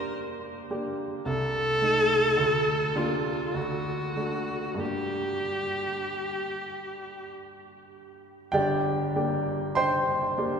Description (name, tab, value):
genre	classical, romantic duo for viola and grand piano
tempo	47-54 BPM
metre	3/4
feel	rubato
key	G minor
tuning	A4 = 440 Hz
part	rich viola	melody	0.0-7.3 s	F4 to Bb4	-27 LUFS	equal	none
part	warm baby grand piano	accompaniment	0.0-10.6 s	G1 to C6	-28 LUFS	right 1 dB	none
room	wet cathedral reverb, RT60 5.6 s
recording	recorded in a church or concert hall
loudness	-25 LUFS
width	side -6 dB against mid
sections	0.0-8.5 A section; 8.5-10.6 A section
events	none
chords	0.0 Gm; 1.3 Adim/C; 2.4 Gm/D; 3.6 D; 4.8 Gm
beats	0.15 | 1.26 2.39 3.56 | 4.80 6.05 7.30 | 8.55 9.79